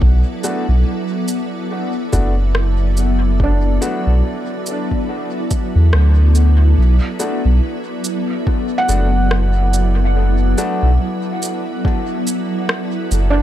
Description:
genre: ambient dub.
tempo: 71 BPM.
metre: 4/4.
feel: swing 59% on 16ths.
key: B minor.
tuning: A4 = 440 Hz.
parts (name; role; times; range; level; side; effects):
soft additive organ-like pad; sustained chords; 0.0-13.4 s; F#3 to D5; -22 LUFS; equal; ensemble chorus, built-in reverb.
felt-muted upright piano; arpeggios; 0.0-13.4 s; D4 to F#5; -26 LUFS; right 2 dB; dub echo.
warm sub bass; bass; 0.0-13.4 s; F#1 to E2; -13 LUFS; equal; none.
electronic kick drum; drums; 0.0-12.0 s; none; -18 LUFS; equal; overdrive, small room reverb.
clear upright piano; stabs; 0.4-10.9 s; A3 to F#4; -27 LUFS; left 2 dB; dub echo.
electronic shaker and rim click; drums; 0.4-13.3 s; none; -24 LUFS; right 1 dB; overdrive, small room reverb, dub echo.
room: little or no reverb.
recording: echo-heavy mix.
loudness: -14 LUFS.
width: side -12 dB against mid.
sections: 0.0-6.8 A section; 6.8-13.4 B section.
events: band accent 5.9-6.4.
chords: 0.0 Bm7.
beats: | 0.02 0.86 1.71 2.55 | 3.40 4.24 5.09 5.93 | 6.78 7.62 8.47 9.31 | 10.16 11.00 11.85 12.69.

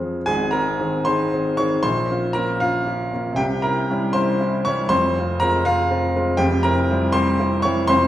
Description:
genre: classical, romantic character piece for solo piano.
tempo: 79 BPM (dotted quarters).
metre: 6/8.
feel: rubato.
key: unclear.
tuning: A4 = 444 Hz.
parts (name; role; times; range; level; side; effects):
clear baby grand piano; solo; 0.0-8.1 s; F1 to F6; -18 LUFS; equal; none.
room: wet recital hall reverb, RT60 1.5 s.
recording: recorded in a church or concert hall.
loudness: -18 LUFS.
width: side -12 dB against mid.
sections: 0.3-8.1 A section.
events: none.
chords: 0.3 Ab; 1.8 Bbm; 3.4 C7b9; 4.9 Fm; 6.4 C7/F.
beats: | 0.28 1.08 | 1.85 2.61 | 3.38 4.14 | 4.92 5.66 | 6.41 7.15 | 7.91.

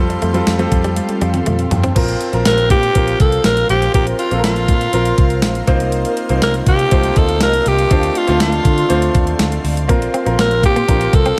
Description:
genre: 1980s-style pop.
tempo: 121 BPM.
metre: 4/4.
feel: straight.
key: Bb major.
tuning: A4 = 442 Hz.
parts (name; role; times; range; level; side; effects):
clear grand piano; accompaniment; 0.0-11.4 s; G3 to C5; -23 LUFS; equal; none.
ethereal airy pad; sustained chords; 0.0-11.4 s; A4 to C6; -29 LUFS; equal; ensemble chorus, built-in reverb, phaser.
direct-recorded clean electric guitar; riff; 0.0-1.9, 9.9-11.3 s; G3 to D4; -27 LUFS; equal; analog chorus, tape echo.
vintage muted picked electric bass; bass; 0.0-11.3 s; Bb1 to D3; -21 LUFS; equal; none.
clean 12-bit digital drum machine; drums; 0.1-11.4 s; crash cymbal, hi-hat, kick drum, snare drum, tambourine, toms; -19 LUFS; equal; none.
mellow synth brass; stabs; 1.1-1.7, 7.9-8.9 s; C4 to A4; -30 LUFS; equal; chorus, tape echo.
raspy alto saxophone; melody; 2.5-11.4 s; F4 to Bb4; -19 LUFS; equal; none.
room: light reverb.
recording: none.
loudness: -15 LUFS.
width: mono.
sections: 0.0-2.0 A section; 2.0-11.4 B section.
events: drum fill 1.0-2.0; band accent 7.9-9.9.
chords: 0.0 Fadd9; 2.0 Bbsus2; 5.7 F7sus4/C; 7.9 Dm7; 9.9 Bbsus2.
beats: 0.47 0.97 1.46 | 1.96 2.46 2.95 3.45 | 3.94 4.44 4.93 5.43 | 5.93 6.42 6.92 7.41 | 7.91 8.40 8.90 9.40 | 9.89 10.39 10.88 11.38.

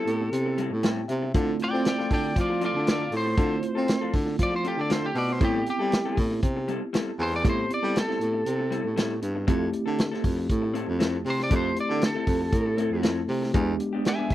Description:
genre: straight-eighth soul blues.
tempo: 118 BPM.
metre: 4/4.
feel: swing 53% on 16ths.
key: A minor.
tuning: A4 = 443 Hz.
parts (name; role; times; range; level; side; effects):
lightly driven lead guitar; melody; 0.0-14.3 s; F4 to G#5; -29 LUFS; equal; none.
mellow tine electric piano; accompaniment; 0.0-14.3 s; G#3 to G5; -30 LUFS; right 2 dB; medium stereo tremolo.
electric guitar through a small old amp; stabs; 0.0-14.3 s; F3 to A4; -34 LUFS; left 5 dB; none.
breathy baritone saxophone; bass; 0.1-14.3 s; E2 to C4; -28 LUFS; equal; none.
warm soul drum kit; drums; 0.1-14.3 s; hi-hat, kick drum, snare drum; -26 LUFS; equal; none.
room: little or no reverb.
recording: dry, close 1970s-style studio recording.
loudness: -23 LUFS.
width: side -14 dB against mid.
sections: 0.0-14.3 A section.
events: tine electric piano fill 0.6-1.3.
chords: 0.0 Am7; 1.3 Dm7; 5.4 Am7; 9.5 Fmaj7; 13.5 E7#9.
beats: 0.33 0.84 | 1.35 1.85 2.36 2.87 | 3.38 3.89 4.40 4.91 | 5.41 5.92 6.43 6.94 | 7.45 7.96 8.46 8.97 | 9.48 9.99 10.49 11.00 | 11.51 12.02 12.53 13.03 | 13.54 14.05.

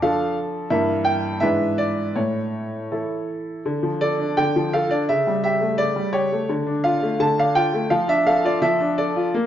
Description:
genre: classical-period piano sonatina.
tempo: 84 BPM.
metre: 2/4.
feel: rubato.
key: D minor.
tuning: A4 = 440 Hz.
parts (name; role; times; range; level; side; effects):
bright baby grand piano; solo; 0.0-9.5 s; G2 to A5; -19 LUFS; equal; none.
room: moderate recital hall reverb, RT60 1.6 s.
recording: dark, warm production, nothing above 7.5 kHz.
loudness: -19 LUFS.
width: side -10 dB against mid.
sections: 0.0-3.7 A section; 3.7-9.5 B section.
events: none.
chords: 0.0 Dm/F; 0.7 Edim/G; 1.4 E7/G#; 2.2 A; 3.7 Dm; 5.1 A7/C#; 6.5 Dm; 7.9 Dm/F.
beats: 0.01 | 0.71 1.43 | 2.17 2.92 | 3.67 4.39 | 5.10 5.81 | 6.52 7.23 | 7.92 8.63 | 9.33.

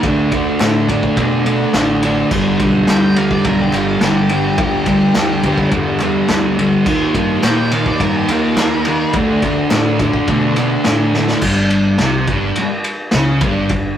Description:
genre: garage rock duo or trio.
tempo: 105 BPM.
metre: 4/4.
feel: straight.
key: unclear.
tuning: A4 = 440 Hz.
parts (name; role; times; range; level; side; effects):
thick fuzz guitar; riff; 0.0-13.9 s; G2 to Eb4; -14 LUFS; equal; distortion.
growling fingered electric bass; bass; 0.0-14.0 s; G1 to B2; -23 LUFS; equal; overdrive.
vintage drum kit; drums; 0.0-13.8 s; crash cymbal, kick drum, ride cymbal, snare drum; -19 LUFS; equal; none.
group handclap; percussion; 0.6-11.0 s; none; -26 LUFS; equal; none.
octave-fuzz lead guitar; melody; 2.9-9.1 s; F4 to G5; -23 LUFS; left 2 dB; distortion.
room: moderate stone room reverb, RT60 1.0 s.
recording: rough rehearsal-room recording, warm saturation.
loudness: -12 LUFS.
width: side -10 dB against mid.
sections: 0.0-11.4 A section; 11.4-14.0 B section.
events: drum fill 11.1.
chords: 0.0 D5; 2.3 G5; 6.9 Eb; 9.1 D5; 11.4 Gsus4.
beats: | 0.03 0.60 1.17 1.74 | 2.31 2.88 3.45 4.02 | 4.59 5.16 5.73 6.30 | 6.87 7.44 8.01 8.57 | 9.14 9.71 10.28 10.85 | 11.42 11.99 12.56 13.13 | 13.70.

